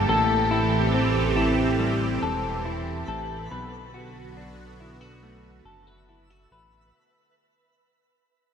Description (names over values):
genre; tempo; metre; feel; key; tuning
dream pop; 70 BPM; 4/4; straight; unclear; A4 = 440 Hz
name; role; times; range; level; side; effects
lush unison pad; sustained chords; 0.0-6.9 s; D3 to A4; -27 LUFS; right 3 dB; chorus, phaser
semi-hollow electric guitar; arpeggios; 0.0-7.5 s; A2 to B4; -26 LUFS; left 3 dB; wide subtle chorus, tape echo
chorused synth bass; bass; 0.0-6.9 s; E1 to B1; -29 LUFS; right 1 dB; none
twinkling granular texture; texture; 3.1-7.3 s; B4 to E5; -55 LUFS; right 2 dB; built-in reverb, tape echo
room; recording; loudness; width
moderate shimmer reverb, RT60 4.3 s; none; -22 LUFS; side -7 dB against mid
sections
0.0-6.9 A section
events
fade-out 0.0-6.9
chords
0.1 Am7; 3.5 Bm7